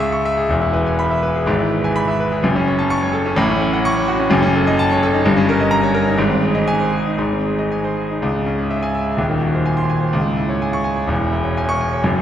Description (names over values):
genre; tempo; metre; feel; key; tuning
classical, virtuoso piano study; 126 BPM; 2/4; rubato; E major, C# minor from 4.3 s; A4 = 440 Hz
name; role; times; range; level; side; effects
clear concert grand piano; solo; 0.0-12.2 s; D#1 to C#6; -15 LUFS; equal; none
room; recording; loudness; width
wet church reverb, RT60 3.4 s; recorded in a church or concert hall; -15 LUFS; side -10 dB against mid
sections
0.5-8.2 A section; 8.2-12.2 B section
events
none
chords
0.0 C#m; 0.5 E; 1.5 E/G#; 2.4 F#m; 3.4 F#m/A; 4.3 D#m7b5/F#; 5.3 D#7/G; 6.2 G#; 8.2 C#m; 9.2 G#7/D#; 10.2 C#m; 11.1 C#m/E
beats
0.00 | 0.51 1.00 | 1.48 1.97 | 2.44 2.92 | 3.38 3.85 | 4.32 4.79 | 5.25 5.72 | 6.18 6.67 | 7.19 7.72 | 8.23 8.71 | 9.19 9.67 | 10.15 10.63 | 11.11 11.58 | 12.05